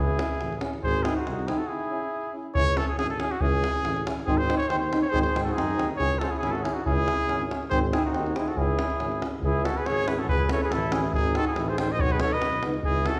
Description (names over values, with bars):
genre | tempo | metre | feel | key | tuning
balkan folk, Balkan brass band | 140 BPM | 2/4 | swing 54% on 16ths | C# harmonic minor, C# minor from 9.4 s | A4 = 439 Hz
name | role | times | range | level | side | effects
warm trumpet | melody | 0.0-13.2 s | F#4 to D#5 | -31 LUFS | equal | none
warm flugelhorn | second line | 0.0-2.3, 5.1-13.2 s | D#4 to B#4 | -35 LUFS | equal | none
mellow tuba | bass | 0.0-13.1 s | G#1 to G#2 | -34 LUFS | equal | none
clear euphonium | accompaniment | 0.2-13.2 s | D#4 to E4 | -35 LUFS | equal | none
clear trombone | accompaniment | 0.2-13.1 s | B3 to C#4 | -37 LUFS | equal | none
davul | percussion | 0.2-13.2 s | none | -32 LUFS | equal | none
room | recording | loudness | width
wet recital hall reverb, RT60 1.7 s | recorded in a church or concert hall | -26 LUFS | mono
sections
0.0-2.6 A section; 2.6-9.4 A section; 9.4-13.2 B section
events
break 1.7-2.6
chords
0.0 C#m; 0.8 G#; 1.7 C#m; 4.3 G#; 6.0 C#m; 7.7 G#; 8.6 C#m; 11.1 G#; 12.0 B